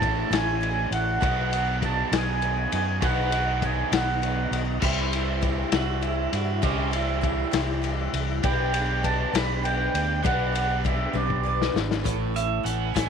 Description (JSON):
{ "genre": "folk rock and heartland rock", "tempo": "66 BPM (dotted quarters)", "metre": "6/8", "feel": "straight", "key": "unclear", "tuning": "A4 = 444 Hz", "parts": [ { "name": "mellow accordion", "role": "melody", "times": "0.0-4.6, 8.4-11.8 s", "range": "D5 to B5", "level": "-28 LUFS", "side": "right 4 dB", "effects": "none" }, { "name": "clear baby grand piano", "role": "accompaniment", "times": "0.0-13.1 s", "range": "G3 to D6", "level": "-39 LUFS", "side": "right 11 dB", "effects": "none" }, { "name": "picked twelve-string acoustic guitar", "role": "accompaniment", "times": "0.0-13.1 s", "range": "A2 to B4", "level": "-33 LUFS", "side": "left 13 dB", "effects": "none" }, { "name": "tonewheel organ", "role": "sustained chords", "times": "0.0-13.1 s", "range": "G3 to E5", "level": "-39 LUFS", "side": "equal", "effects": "overdrive, chorus vibrato, slow rotary speaker" }, { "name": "overdriven electric guitar", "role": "riff", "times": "0.0-13.1 s", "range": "A2 to C5", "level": "-32 LUFS", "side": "right 15 dB", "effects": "none" }, { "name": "fingered electric bass", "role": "bass", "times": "0.0-13.1 s", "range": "G#1 to G2", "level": "-28 LUFS", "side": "equal", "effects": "none" }, { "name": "vintage drum kit", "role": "drums", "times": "0.0-13.1 s", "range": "crash cymbal, hi-hat, kick drum, ride cymbal, snare drum, toms", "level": "-28 LUFS", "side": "left 6 dB", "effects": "none" }, { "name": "pedal steel guitar", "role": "second line", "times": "4.8-7.5, 12.4-13.1 s", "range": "C#4 to G#5", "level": "-31 LUFS", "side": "right 12 dB", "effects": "none" } ], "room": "light reverb, small room ambience", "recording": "1960s-style stereo with parts hard left and right", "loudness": "-22 LUFS", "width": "side -7 dB against mid", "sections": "0.0-12.1 A section; 12.1-13.1 B section", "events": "drum fill 11.1-12.1; pedal steel guitar solo 12.1-13.1", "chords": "0.0 A; 1.2 B; 4.8 C; 8.4 G/B; 12.1 Aadd9" }